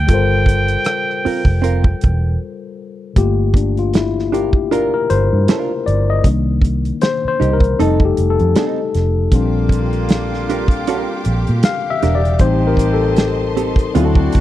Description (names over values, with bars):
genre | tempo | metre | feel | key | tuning
R&B, neo-soul | 78 BPM | 4/4 | swing 59% on 16ths | G minor | A4 = 440 Hz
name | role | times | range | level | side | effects
trumpet with straight mute | melody | 0.0-2.4 s | G5 | -21 LUFS | right 2 dB | none
tine electric piano | accompaniment | 0.0-14.4 s | Eb3 to F5 | -19 LUFS | left 6 dB | none
vintage muted fingered electric bass | bass | 0.0-14.4 s | E1 to Bb2 | -17 LUFS | right 1 dB | none
warm soul drum kit | drums | 0.1-14.4 s | hi-hat, kick drum, rim click, snare drum | -14 LUFS | right 1 dB | none
hollow-body jazz guitar | second line | 1.2-14.2 s | C4 to Bb4 | -21 LUFS | right 9 dB | none
bright studio string section | sustained chords | 9.3-14.4 s | F#4 to D6 | -29 LUFS | right 1 dB | none
warm horn section | stabs | 9.3-14.4 s | Bb3 to G4 | -26 LUFS | right 3 dB | none
room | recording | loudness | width
small room ambience | dry, close 1970s-style studio recording | -13 LUFS | side -13 dB against mid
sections
0.0-3.2 A section; 3.2-14.4 B section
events
break 2.4-3.2; tine electric piano solo 3.2-14.4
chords
0.0 Gm11; 3.2 Gm7; 6.2 Cm7; 7.8 F7; 9.3 Bb6; 12.4 Am7b5